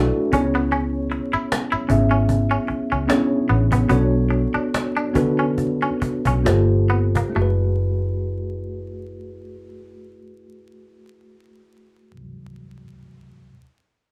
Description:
R&B, neo-soul; 66-77 BPM; 4/4; swing 57% on 16ths; F# minor; A4 = 441 Hz
mellow tine electric piano; accompaniment; 0.0-13.5 s; A3 to E5; -25 LUFS; equal
vintage muted fingered electric bass; bass; 0.0-12.2 s; F#1 to D2; -24 LUFS; equal
twangy electric guitar; second line; 0.3-7.6 s; A3 to E4; -27 LUFS; equal
cajon; drums; 0.3-7.3 s; -28 LUFS; equal
moderate studio ambience, RT60 0.5 s; band playing live in one room, vinyl crackle; -20 LUFS; mono
0.0-7.3 A section; 7.3-11.0 B section
slowing down 0.7-7.3
0.3 C#m7; 3.9 Bm9; 6.4 Gm11; 7.3 F#m11

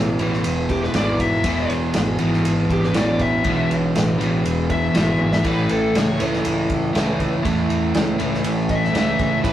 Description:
blues rock power trio and southern rock; 120 BPM; 4/4; straight; E major; A4 = 441 Hz
crunchy overdriven guitar; riff; 0.0-9.5 s; E2 to A3; -20 LUFS; equal
growling picked electric bass; bass; 0.0-9.5 s; E1 to E2; -25 LUFS; equal; overdrive
vintage drum kit; drums; 0.2-9.5 s; kick drum, ride cymbal, snare drum, toms; -24 LUFS; equal
bluesy overdriven lead guitar; melody; 0.7-9.5 s; G4 to E5; -23 LUFS; left 2 dB; distortion
moderate stone room reverb, RT60 1.0 s; rough rehearsal-room recording, tube saturation; -17 LUFS; side -12 dB against mid
0.0-9.5 A section
lead electric guitar solo 0.0-9.5; drum fill 5.2
0.0 E; 5.4 A

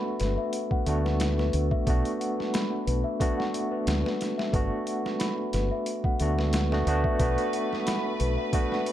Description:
trip hop; 90 BPM; 4/4; swing 54% on 16ths; B minor; A4 = 440 Hz
barky tine electric piano; accompaniment; 0.0-8.9 s; A3 to F#4; -29 LUFS; right 1 dB; tremolo, vintage 12-bit sampler grit, tape echo
celesta; arpeggios; 0.0-8.9 s; B4 to B5; -33 LUFS; left 4 dB; tape echo
deep dub fingered electric bass; bass; 0.2-8.4 s; G1 to D2; -27 LUFS; equal
boom bap sampler-style drum kit; drums; 0.2-8.9 s; hi-hat, kick drum, snare drum; -30 LUFS; equal; overdrive
rich studio violin section; sustained chords; 7.2-8.9 s; B4; -36 LUFS; left 1 dB
light reverb, digital ambience; echo-heavy mix; -24 LUFS; side -12 dB against mid
0.0-8.9 A section
0.0 Gmaj7 (rootless); 1.9 Bm7; 4.5 Gmaj7 (rootless); 7.2 Bm7

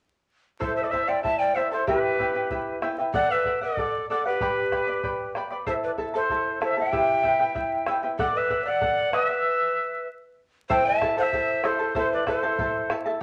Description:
andean folk, Andean ensemble; 95 BPM; 2/4; straight; A4 = 441 Hz
quena; melody; 0.6-12.9 s; B4 to A5; -28 LUFS; equal
breathy bright large pan pipes; second line; 0.6-12.9 s; G4 to E5; -30 LUFS; equal
charango; accompaniment; 0.6-13.2 s; E4 to B5; -30 LUFS; equal
bombo; percussion; 0.6-13.0 s; -38 LUFS; equal
wet club reverb, RT60 0.8 s; vinyl crackle; -25 LUFS; mono
0.6-10.7 A section; 10.7-13.2 B section
stop 9.5-10.7
0.6 Am; 1.9 Em; 3.1 D; 4.4 G; 5.7 Am; 6.9 Em; 8.2 D; 9.5 N.C.; 10.7 Am

